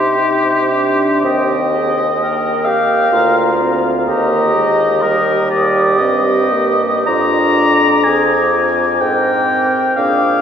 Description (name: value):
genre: classical, slow romantic movement for wind quintet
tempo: 53-65 BPM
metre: 3/4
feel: rubato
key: unclear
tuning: A4 = 437 Hz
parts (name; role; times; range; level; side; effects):
- mellow concert flute; melody; 0.0-10.4 s; G5 to Eb6; -20 LUFS; left 3 dB; none
- warm oboe; second line; 0.0-10.4 s; G4 to Bb5; -16 LUFS; left 1 dB; none
- clear French horn; accompaniment; 0.0-10.4 s; G3 to Eb4; -20 LUFS; left 1 dB; none
- clear clarinet; accompaniment; 0.0-10.4 s; F4 to Bb4; -21 LUFS; right 4 dB; none
- warm bassoon; bass; 0.0-10.4 s; D2 to C3; -18 LUFS; right 1 dB; none
room: wet cathedral reverb, RT60 4.2 s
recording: recorded in a church or concert hall, nothing above 7.7 kHz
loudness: -12 LUFS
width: side -8 dB against mid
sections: 0.0-10.4 A section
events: none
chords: 0.0 Cm; 1.2 Eb; 3.1 Bb/D; 4.1 Eb; 7.1 Fm